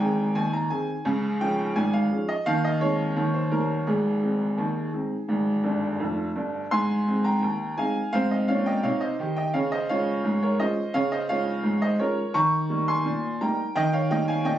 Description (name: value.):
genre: ragtime piano.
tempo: 85 BPM.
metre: 2/4.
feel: straight.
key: Ab major.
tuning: A4 = 439 Hz.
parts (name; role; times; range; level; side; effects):
clear upright piano; solo; 0.0-14.6 s; F1 to Db6; -22 LUFS; equal; none.
room: moderate studio reverb, RT60 0.6 s.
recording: recorded on a phone in the room, studio ambience, compression, nothing above 7.8 kHz.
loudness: -23 LUFS.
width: side -12 dB against mid.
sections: 0.0-6.7 A section; 6.7-14.6 B section.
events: upright piano fill 5.7-6.7.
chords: 0.0 Ab; 1.1 Db; 2.5 Ab/Eb; 3.2 Eb; 3.9 Ab; 9.5 Db; 12.4 Eb7.